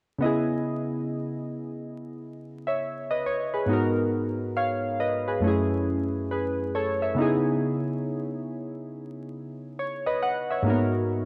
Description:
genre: hip hop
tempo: 69 BPM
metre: 4/4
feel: swing 63% on 16ths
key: C# minor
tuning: A4 = 440 Hz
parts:
  - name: warm analog keys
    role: accompaniment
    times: 0.2-11.3 s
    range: F#2 to F#5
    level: -28 LUFS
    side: equal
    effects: chorus, cassette tape, low-pass filter
room: moderate plate reverb, RT60 2.8 s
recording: vinyl crackle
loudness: -27 LUFS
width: mono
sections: 0.2-11.3 A section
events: none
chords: 0.2 C#m9; 3.7 G#m9; 5.4 F#m9; 7.2 C#m9; 10.7 G#m9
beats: | 0.22 1.09 1.96 2.83 | 3.69 4.56 5.43 6.30 | 7.17 8.04 8.91 9.78 | 10.65

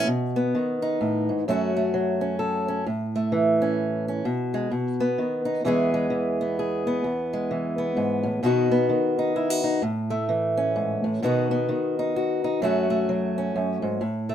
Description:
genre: folk, solo fingerstyle acoustic guitar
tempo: 129 BPM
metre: 3/4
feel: swing 61% on 8ths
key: E major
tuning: A4 = 442 Hz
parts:
  - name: fingerpicked acoustic archtop guitar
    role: solo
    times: 0.0-14.3 s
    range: E2 to A4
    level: -22 LUFS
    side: equal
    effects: none
room: light reverb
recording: minimal, uncompressed stereo recording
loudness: -22 LUFS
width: side -10 dB against mid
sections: 0.0-7.0 A section; 7.0-14.3 A section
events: none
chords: 0.1 B; 1.5 F#m; 2.9 A; 4.3 G#m/B; 4.7 B; 5.6 E; 8.4 B; 9.8 A; 11.2 B; 12.6 F#m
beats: | 0.07 0.54 1.00 | 1.47 1.93 2.40 | 2.86 3.33 3.79 | 4.25 4.72 5.18 | 5.65 6.11 6.58 | 7.04 7.51 7.97 | 8.44 8.90 9.37 | 9.83 10.29 10.76 | 11.22 11.69 12.15 | 12.62 13.08 13.54 | 14.01

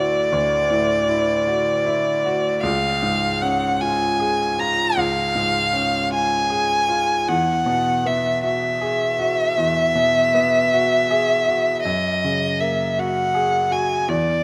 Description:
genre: classical, impressionist duo for violin and grand piano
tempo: 52 BPM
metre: 4/4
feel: rubato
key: unclear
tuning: A4 = 440 Hz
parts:
  - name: rich violin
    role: melody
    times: 0.0-14.4 s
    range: D5 to A#5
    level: -21 LUFS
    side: equal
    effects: none
  - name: clear baby grand piano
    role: accompaniment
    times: 0.0-14.4 s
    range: C#2 to G#4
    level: -26 LUFS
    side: equal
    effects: none
room: moderate concert hall reverb, RT60 2.4 s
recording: close, detailed microphones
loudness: -20 LUFS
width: mono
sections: 0.0-14.4 A section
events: none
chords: 0.0 Dadd9; 2.6 C#; 7.3 Eadd9; 11.8 F#add9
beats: 0.32 1.48 | 2.64 3.81 4.98 6.13 | 7.29 8.44 9.59 10.72 | 11.84 12.97 14.10

